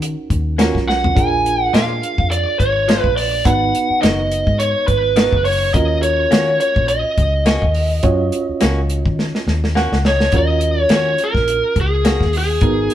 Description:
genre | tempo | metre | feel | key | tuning
straight-eighth soul blues | 105 BPM | 4/4 | swing 55% on 16ths | Eb minor | A4 = 440 Hz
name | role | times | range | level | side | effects
lead guitar through a small cranked amp | melody | 0.0-12.9 s | Ab4 to Ab5 | -17 LUFS | right 1 dB | overdrive
barky reed electric piano | accompaniment | 0.0-12.9 s | Cb4 to Gb5 | -24 LUFS | right 4 dB | overdrive, fast tremolo
vintage muted fingered electric bass | bass | 0.0-12.9 s | Gb1 to Eb3 | -20 LUFS | left 1 dB | none
warm soul drum kit | drums | 0.0-12.9 s | hi-hat, kick drum, snare drum, toms | -18 LUFS | equal | none
direct-recorded clean electric guitar | stabs | 0.6-12.2 s | Eb3 to Gb4 | -24 LUFS | left 4 dB | none
room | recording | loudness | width
light reverb | band playing live in one room | -14 LUFS | side -11 dB against mid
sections
0.0-10.3 A section; 10.3-12.9 A section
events
drum fill 0.9, 9.2-10.3; reed electric piano fill 9.5-10.3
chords
0.0 Ebm7; 1.2 Bb7; 3.5 Abm7; 5.8 Ebm7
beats
0.02 0.59 | 1.17 1.74 2.31 2.89 | 3.46 4.03 4.60 5.18 | 5.75 6.32 6.90 7.47 | 8.04 8.62 9.19 9.76 | 10.33 10.91 11.48 12.05 | 12.63

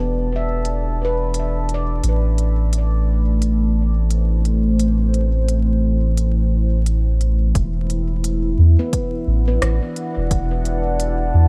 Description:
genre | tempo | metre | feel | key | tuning
ambient dub | 87 BPM | 4/4 | swing 59% on 16ths | E minor | A4 = 440 Hz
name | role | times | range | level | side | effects
deep dark ambient pad | sustained chords | 0.0-11.5 s | A3 to A5 | -27 LUFS | equal | chorus, built-in reverb
handpan | arpeggios | 0.0-4.5, 8.8-11.5 s | B3 to E5 | -29 LUFS | equal | vintage 12-bit sampler grit, low-pass filter, tape echo
soft dub sub bass | bass | 0.0-11.5 s | E1 to E2 | -20 LUFS | equal | none
organic electronic drum kit | drums | 0.7-11.2 s | hi-hat, rim click | -30 LUFS | equal | low-pass filter on hats, low-pass filter on snare
electronic kick drum | drums | 7.6-10.5 s | none | -25 LUFS | equal | overdrive
room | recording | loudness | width
digital ambience | vinyl crackle | -19 LUFS | mono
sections
0.0-7.5 A section; 7.5-11.5 B section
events
none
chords
0.0 Em11; 2.0 Am9; 7.5 Em11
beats
0.65 1.34 | 2.03 2.72 3.41 4.10 | 4.79 5.48 6.17 6.86 | 7.55 8.24 8.93 9.62 | 10.31 11.00

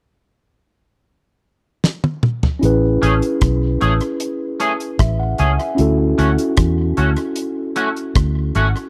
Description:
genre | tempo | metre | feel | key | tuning
lovers rock reggae | 76 BPM | 4/4 | straight | A major | A4 = 440 Hz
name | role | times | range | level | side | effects
damped 70s drum kit | drums | 1.8-8.9 s | hi-hat, kick drum, rim click, snare drum, toms | -21 LUFS | equal | tape echo
mellow tine electric piano | accompaniment | 2.6-8.9 s | C#4 to G#5 | -22 LUFS | equal | tape echo
vintage muted fingered electric bass | bass | 2.6-8.7 s | G#1 to E2 | -19 LUFS | equal | none
twangy electric guitar | stabs | 3.0-8.7 s | A3 to G#4 | -22 LUFS | equal | analog chorus
room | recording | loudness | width
little or no reverb | dry, close 1970s-style studio recording | -18 LUFS | mono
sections
0.0-2.6 A section; 2.6-8.9 B section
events
drum fill 1.8-2.6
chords
0.0 N.C.; 2.6 Amaj7; 5.8 Dmaj7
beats
0.25 1.04 1.83 | 2.63 3.42 4.21 5.00 | 5.79 6.58 7.37 8.16

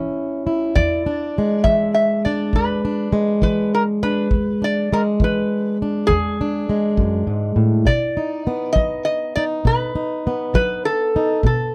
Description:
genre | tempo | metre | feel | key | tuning
acoustic country blues, solo or duo | 68 BPM (dotted quarters) | 12/8 | straight | E mixolydian | A4 = 441 Hz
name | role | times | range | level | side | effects
fingerpicked plugged-in swing-style acoustic guitar | accompaniment | 0.0-11.7 s | E2 to E4 | -22 LUFS | equal | none
metal-body resonator slide guitar | melody | 0.8-11.7 s | G#4 to E5 | -23 LUFS | equal | none
kick drum | drums | 0.8-11.6 s | none | -23 LUFS | equal | none
room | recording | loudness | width
little or no reverb | none | -19 LUFS | mono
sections
0.0-11.7 A section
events
none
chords
0.0 A (rootless); 0.8 E7; 7.9 B7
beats
| 0.75 1.64 2.53 3.42 | 4.30 5.19 6.08 6.97 | 7.86 8.75 9.64 10.53 | 11.43

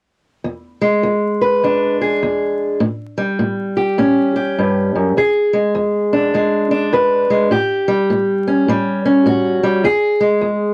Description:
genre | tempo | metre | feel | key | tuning
blues | 102 BPM | 4/4 | swing 62% on 8ths | E mixolydian | A4 = 440 Hz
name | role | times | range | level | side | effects
fingerpicked steel-string acoustic guitar | solo | 0.4-10.7 s | E2 to B4 | -16 LUFS | equal | none
room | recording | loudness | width
light reverb | dry, gritty hardware recording, vinyl crackle | -16 LUFS | mono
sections
0.4-5.2 A section; 5.2-10.7 B section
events
none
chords
0.4 E7; 2.8 A7; 5.2 E7; 7.5 A7; 9.8 E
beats
| 0.44 1.03 1.62 2.21 | 2.80 3.39 3.98 4.57 | 5.16 5.75 6.33 6.92 | 7.50 8.09 8.68 9.26 | 9.84 10.43

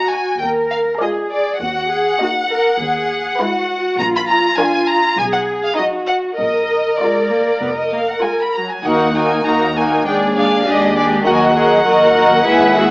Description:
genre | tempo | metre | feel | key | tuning
quick classical-period movement for string orchestra | 100 BPM | 4/4 | straight | Eb minor | A4 = 439 Hz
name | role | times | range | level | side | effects
rich chamber violin section | melody | 0.0-12.9 s | D5 to Cb6 | -18 LUFS | equal | none
rich chamber violin section | second line | 0.0-12.9 s | D#4 to E5 | -17 LUFS | equal | none
bright chamber viola section | accompaniment | 0.0-12.9 s | F3 to Gb4 | -19 LUFS | equal | none
rich chamber cello section | bass | 0.0-12.9 s | F4 to B4 | -18 LUFS | equal | none
rich chamber double bass section | bass | 0.4-12.9 s | F1 to Eb2 | -24 LUFS | equal | none
room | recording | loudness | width
moderate large studio reverb, RT60 1.4 s | worn, warbling old tape, cassette tape, warbly pitch drift, small speaker sound | -13 LUFS | side -24 dB against mid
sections
0.0-12.9 A section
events
none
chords
0.4 Ddim/Eb; 1.6 Ebm; 2.8 E/Eb; 4.0 Bb; 5.2 B; 6.4 Bb; 8.8 Ebm; 10.1 Fm13/Eb; 11.3 Ebm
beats
0.41 1.00 | 1.61 2.21 2.81 3.40 | 3.99 4.58 5.18 5.78 | 6.39 7.00 7.62 8.23 | 8.84 9.45 10.06 10.66 | 11.26 11.85 12.45

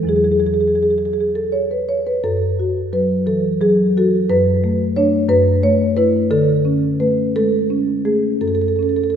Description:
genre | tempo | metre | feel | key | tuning
classical, contemporary piece for solo marimba | 54-61 BPM (dotted quarters) | 6/8 | rubato | F# minor | A4 = 443 Hz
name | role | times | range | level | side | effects
marimba with soft mallets | solo | 0.0-9.2 s | E2 to C#5 | -14 LUFS | equal | none
room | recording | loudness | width
wet concert hall reverb, RT60 2.5 s | minimal, uncompressed stereo recording | -14 LUFS | side -8 dB against mid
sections
0.0-9.2 A section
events
none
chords
0.1 Eadd9; 2.3 F#m7; 4.3 Bm7/F#; 5.3 F#m7; 6.3 D5; 8.4 F#m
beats
| 0.10 1.17 | 2.25 3.29 | 4.31 5.31 | 6.31 7.34 | 8.42

